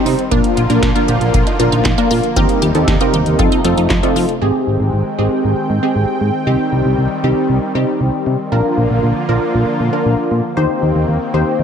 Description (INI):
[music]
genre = synth-pop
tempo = 117 BPM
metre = 4/4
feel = straight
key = Bb major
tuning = A4 = 440 Hz
[part]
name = funky polysynth comp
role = accompaniment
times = 0.0-11.6 s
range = Bb3 to C5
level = -17 LUFS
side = equal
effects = chorus
[part]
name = lush unison pad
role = sustained chords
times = 0.0-11.6 s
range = C3 to G5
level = -20 LUFS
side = left 1 dB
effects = chorus
[part]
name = resonant blip pluck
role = arpeggios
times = 0.0-4.4 s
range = D4 to G4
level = -23 LUFS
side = equal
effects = phaser, ping-pong delay
[part]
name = solid FM bass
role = bass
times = 0.1-11.6 s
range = Ab1 to F3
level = -16 LUFS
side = equal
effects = none
[part]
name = electro analog drum machine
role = drums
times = 0.1-4.4 s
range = handclaps, hi-hat, kick drum, snare drum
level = -18 LUFS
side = equal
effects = none
[sound]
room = light reverb, digital ambience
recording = none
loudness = -13 LUFS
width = side -7 dB against mid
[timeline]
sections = 0.0-4.4 A section; 4.4-11.6 B section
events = none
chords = 0.3 Bb; 2.4 Eb6; 3.4 F7; 4.4 Abmaj7; 6.5 Cm; 8.5 Bb; 10.6 Eb6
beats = | 0.31 0.83 1.34 1.85 | 2.37 2.88 3.39 3.90 | 4.42 4.93 5.44 5.96 | 6.47 6.98 7.49 8.01 | 8.52 9.03 9.54 10.06 | 10.57 11.08 11.60